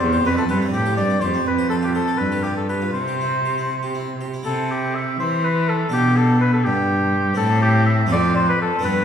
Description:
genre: classical, baroque-style sonata movement with continuo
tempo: 82 BPM (dotted quarters)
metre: 6/8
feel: straight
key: C major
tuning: A4 = 440 Hz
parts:
  - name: warm oboe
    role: melody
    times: 0.0-9.0 s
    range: G4 to E5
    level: -21 LUFS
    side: left 2 dB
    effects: none
  - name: harpsichord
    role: accompaniment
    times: 0.0-9.0 s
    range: E2 to C5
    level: -25 LUFS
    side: right 3 dB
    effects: none
  - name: rich cello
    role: bass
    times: 0.0-9.0 s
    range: E2 to E3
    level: -21 LUFS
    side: equal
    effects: none
room: wet recital hall reverb, RT60 1.7 s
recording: heard from further back in the room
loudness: -17 LUFS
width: side -8 dB against mid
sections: 0.0-4.5 A section; 4.5-9.0 B section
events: none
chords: 0.0 C/E; 1.5 F; 2.2 G7; 2.9 C; 5.9 G/B; 7.4 Am; 8.1 F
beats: | 0.01 0.74 | 1.47 2.20 | 2.95 3.71 | 4.46 5.20 | 5.93 6.66 | 7.38 8.11 | 8.84

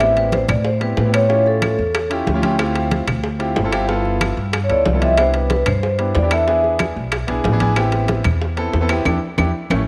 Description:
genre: Afro-Cuban jazz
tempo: 186 BPM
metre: 4/4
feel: straight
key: A minor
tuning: A4 = 440 Hz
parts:
  - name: vibraphone with medium mallets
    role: melody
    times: 0.0-2.1, 4.6-6.6 s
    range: A4 to E5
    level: -21 LUFS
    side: equal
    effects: none
  - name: clear concert grand piano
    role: accompaniment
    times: 0.0-9.8 s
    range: A3 to A4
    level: -25 LUFS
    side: equal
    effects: none
  - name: upright bass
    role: bass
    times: 0.0-9.8 s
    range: G1 to A2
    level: -23 LUFS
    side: equal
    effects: none
  - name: bongos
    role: percussion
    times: 0.0-9.8 s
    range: none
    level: -31 LUFS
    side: equal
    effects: none
  - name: claves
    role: percussion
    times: 0.0-9.8 s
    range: none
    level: -31 LUFS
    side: equal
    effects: none
  - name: congas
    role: percussion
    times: 0.0-9.8 s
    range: none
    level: -28 LUFS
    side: equal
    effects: none
  - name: timbales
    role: percussion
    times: 0.0-9.8 s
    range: none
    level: -30 LUFS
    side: equal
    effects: none
room: moderate plate reverb, RT60 2.6 s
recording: none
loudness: -18 LUFS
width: mono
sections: 0.0-9.9 A section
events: band accent 9.1-9.9; drum fill 9.4-9.9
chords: 0.0 Am9; 1.3 A7b13; 2.6 Dm11; 3.9 G13; 5.2 Cmaj9; 6.5 E7; 7.8 Am9; 9.1 Em7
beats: | 0.01 0.33 0.65 0.98 | 1.30 1.62 1.95 2.27 | 2.59 2.92 3.24 3.56 | 3.89 4.21 4.54 4.86 | 5.18 5.50 5.83 6.15 | 6.48 6.80 7.12 7.45 | 7.77 8.09 8.41 8.74 | 9.06 9.38 9.71

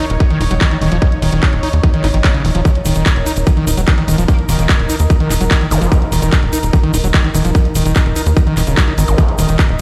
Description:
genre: psychedelic trance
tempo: 147 BPM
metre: 4/4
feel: straight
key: unclear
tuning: A4 = 442 Hz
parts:
  - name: bubbling stepped-filter texture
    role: sustained chords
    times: 0.0-9.8 s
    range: Eb4 to Eb5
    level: -26 LUFS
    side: equal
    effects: chorus, built-in reverb, sidechain pumping
  - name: screaming distorted acid line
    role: riff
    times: 0.0-9.6 s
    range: Db3 to Eb4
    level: -21 LUFS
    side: equal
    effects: distortion, chorus, sidechain pumping, tape echo
  - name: drum and bass drum kit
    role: drums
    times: 0.0-9.8 s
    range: handclaps, hi-hat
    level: -24 LUFS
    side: equal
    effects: overdrive, studio reverb
  - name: tight sequencer bass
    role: bass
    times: 0.1-9.8 s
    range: Eb1 to Eb2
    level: -18 LUFS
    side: equal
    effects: none
  - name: electronic kick drum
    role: drums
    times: 0.2-9.7 s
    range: none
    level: -14 LUFS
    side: equal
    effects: overdrive, studio reverb
  - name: egg shaker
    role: percussion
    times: 2.7-9.7 s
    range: none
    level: -30 LUFS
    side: equal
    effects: none
  - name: metallic wobble bass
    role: second line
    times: 4.3-4.7 s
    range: Bb3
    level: -35 LUFS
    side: equal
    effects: none
  - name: zap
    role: sound effects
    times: 5.7-5.8, 9.1-9.2 s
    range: none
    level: -29 LUFS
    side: equal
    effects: none
room: light reverb, digital ambience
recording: played on a big sound system in a bare room, stone room reverb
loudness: -14 LUFS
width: mono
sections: 0.0-9.8 A section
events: none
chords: 0.0 Eb5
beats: 0.20 0.61 | 1.02 1.43 1.83 2.24 | 2.65 3.06 3.47 3.88 | 4.28 4.69 5.10 5.51 | 5.92 6.33 6.73 7.14 | 7.55 7.96 8.37 8.77 | 9.18 9.59

